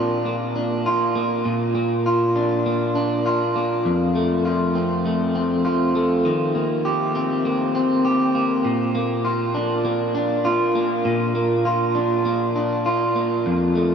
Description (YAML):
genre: dream pop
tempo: 100 BPM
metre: 4/4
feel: straight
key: Bb major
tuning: A4 = 438 Hz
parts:
  - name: electric guitar at the edge of break-up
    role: solo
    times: 0.0-13.9 s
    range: F2 to G4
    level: -18 LUFS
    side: equal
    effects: wide subtle chorus, diffuse ambient delay
room: wet huge ambient reverb, RT60 8.4 s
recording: dreamy mix soaked in reverb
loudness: -18 LUFS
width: side -7 dB against mid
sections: 0.0-13.9 A section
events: none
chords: 0.0 Bb; 3.9 F; 6.3 Eb6; 8.7 Bb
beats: 0.26 0.86 | 1.46 2.06 2.66 3.26 | 3.86 4.46 5.06 5.66 | 6.26 6.86 7.46 8.06 | 8.66 9.26 9.86 10.46 | 11.06 11.66 12.26 12.86 | 13.46